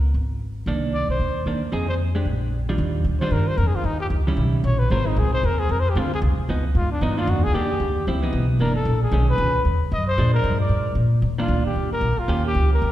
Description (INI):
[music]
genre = jazz, small-group swing and bop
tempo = 227 BPM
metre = 4/4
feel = swing 59% on 8ths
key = Eb major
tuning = A4 = 442 Hz
[part]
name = upright bass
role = bass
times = 0.0-12.9 s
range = Gb1 to Bb2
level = -21 LUFS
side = equal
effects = none
[part]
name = vintage hollow-body jazz guitar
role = accompaniment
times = 0.7-12.7 s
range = D3 to Bb4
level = -27 LUFS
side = right 2 dB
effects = none
[part]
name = breathy trumpet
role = melody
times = 0.9-12.9 s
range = D4 to D#5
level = -26 LUFS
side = left 1 dB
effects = none
[sound]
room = wet concert hall reverb, RT60 2.0 s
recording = recorded in a church or concert hall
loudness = -19 LUFS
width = side -14 dB against mid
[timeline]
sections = 0.0-2.8 A section; 2.8-11.2 B section; 11.2-12.9 C section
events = trumpet solo 11.2-12.9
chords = 0.0 Db5; 0.7 Cm9; 1.7 Fm7; 2.3 Bb6; 2.8 Ebmaj9; 3.8 Eb7b9; 4.9 Ab69; 6.0 Dm7b5; 6.5 Db9; 7.0 Cm9 (rootless); 8.1 Dbm9; 8.6 Gb7alt; 9.1 B69; 10.2 Bb7; 11.2 Cm9; 12.3 Eb7